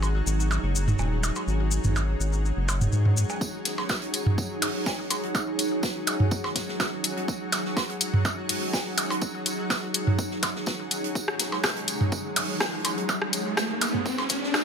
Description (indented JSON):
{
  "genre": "minimal techno",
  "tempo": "124 BPM",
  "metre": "4/4",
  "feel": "straight",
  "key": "unclear",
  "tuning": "A4 = 440 Hz",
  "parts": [
    { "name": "round analog bass", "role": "bass", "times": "0.0-3.2 s", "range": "D#1 to G#2", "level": "-24 LUFS", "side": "equal", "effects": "tube saturation, sidechain pumping" },
    { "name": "electronic percussion blips and toms", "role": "percussion", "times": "0.0-14.6 s", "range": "none", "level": "-27 LUFS", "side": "right 2 dB", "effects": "overdrive, studio reverb" },
    { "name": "maracas", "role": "percussion", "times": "0.0-3.4 s", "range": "none", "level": "-34 LUFS", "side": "left 5 dB", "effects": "none" },
    { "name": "granular cloud pad", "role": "texture", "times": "0.0-14.6 s", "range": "D#4 to F#5", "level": "-32 LUFS", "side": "equal", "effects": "built-in reverb, sidechain pumping" },
    { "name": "pulsing gated texture", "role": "texture", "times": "0.0-14.6 s", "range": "F#3 to F#4", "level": "-35 LUFS", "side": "equal", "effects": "chorus, built-in reverb, sidechain pumping" },
    { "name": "electronic kick drum", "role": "drums", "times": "3.4-14.6 s", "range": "none", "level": "-31 LUFS", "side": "equal", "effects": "overdrive, high-pass filter on kick, studio reverb" },
    { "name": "open jazz drum kit", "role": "drums", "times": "3.4-14.6 s", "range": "hi-hat, snare drum, tambourine", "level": "-34 LUFS", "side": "right 2 dB", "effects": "high-pass filter on hats, studio reverb, high-pass filter on snare, high-pass filter on perc, high-pass filter on room" },
    { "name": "house drum kit", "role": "drums", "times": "3.7-14.6 s", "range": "hi-hat, rim click", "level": "-27 LUFS", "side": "left 2 dB", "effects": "overdrive, high-pass filter on hats, studio reverb, high-pass filter on snare" },
    { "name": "riser", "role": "sound effects", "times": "12.0-14.6 s", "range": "none", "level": "-30 LUFS", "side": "equal", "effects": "none" }
  ],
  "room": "light reverb, studio reverb",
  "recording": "high-pass filter",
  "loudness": "-24 LUFS",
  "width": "side -7 dB against mid",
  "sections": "0.0-3.4 A section; 3.4-14.6 B section",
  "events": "build-up 3.4-14.6; riser 12.0-14.6",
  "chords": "0.0 G#5",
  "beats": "0.03 0.51 0.99 | 1.48 1.96 2.44 2.93 | 3.41 3.90 4.38 4.86 | 5.35 5.83 6.32 6.80 | 7.28 7.77 8.25 8.73 | 9.22 9.70 10.19 10.67 | 11.15 11.64 12.12 12.61 | 13.09 13.57 14.06 14.54"
}